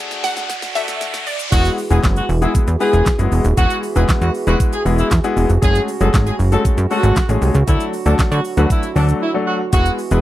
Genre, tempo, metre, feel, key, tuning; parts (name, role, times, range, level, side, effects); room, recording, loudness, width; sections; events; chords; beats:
dance-pop; 117 BPM; 4/4; straight; A4 = 439 Hz
clear baby grand piano; accompaniment; 0.0-10.2 s; F#3 to B4; -22 LUFS; left 5 dB; sidechain pumping
warm French horn section; sustained chords; 0.0-10.2 s; C#3 to G#4; -26 LUFS; right 5 dB; sidechain pumping
riser; sound effects; 0.0-1.5 s; -25 LUFS; equal
pop drum kit; drums; 0.1-10.2 s; crash cymbal, handclaps, hi-hat, kick drum, shaker, snare drum; -19 LUFS; equal
egg shaker; percussion; 0.1-10.2 s; -40 LUFS; right 23 dB
glassy wavetable pluck; melody; 0.2-1.5 s; D5 to F#5; -24 LUFS; right 1 dB; chorus, slapback echo
warm horn section; melody; 1.5-10.2 s; D4 to A4; -21 LUFS; equal; sidechain pumping, slapback echo
plucky analog bass; bass; 1.5-10.2 s; D#1 to D3; -15 LUFS; equal; sidechain pumping
little or no reverb; dry, close 1970s-style studio recording, high-pass filter; -14 LUFS; side -14 dB against mid
0.0-1.5 A section; 1.5-10.2 B section
build-up 0.0-1.5; drum fill 0.0-1.5; riser 0.0-1.5; drop 1.5-10.2; break 9.2-9.7
0.0 D; 1.5 Eadd9; 5.6 F#madd9; 7.7 D
0.50 1.01 | 1.52 2.04 2.55 3.06 | 3.57 4.09 4.60 5.11 | 5.62 6.14 6.65 7.16 | 7.68 8.19 8.70 9.21 | 9.73